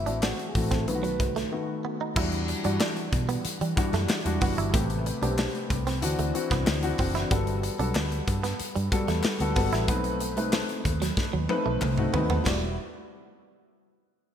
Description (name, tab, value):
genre	polished 1980s jazz-funk pop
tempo	93 BPM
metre	4/4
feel	straight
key	E minor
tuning	A4 = 440 Hz
part	breathy flugelhorn	melody	0.0-1.5 s	E4 to B4	-35 LUFS	right 1 dB	ping-pong delay
part	dark concert grand piano	accompaniment	0.0-12.8 s	C3 to D5	-30 LUFS	left 2 dB	analog chorus
part	vintage muted fingered electric bass	bass	0.0-12.8 s	E1 to E3	-29 LUFS	equal	none
part	direct-recorded clean electric guitar	riff	0.1-12.7 s	F#3 to E4	-34 LUFS	right 7 dB	lush chorus
part	modern studio drum kit	drums	0.1-12.6 s	crash cymbal, hi-hat, kick drum, snare drum, toms	-29 LUFS	equal	none
part	group handclap	percussion	0.2-12.8 s	none	-41 LUFS	left 4 dB	none
room	moderate lush hall reverb, RT60 2.0 s, small room reverb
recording	bright 1980s-style digital production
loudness	-24 LUFS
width	side -9 dB against mid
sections	0.0-2.2 A section; 2.2-12.5 B section; 12.5-14.3 C section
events	break 1.5-2.2; drum fill 11.2-12.5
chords	0.0 F#m7b5; 0.9 B7; 2.2 Em9; 4.7 Am9; 6.0 D9; 7.3 Gmaj9; 9.9 B7b9; 12.5 Em9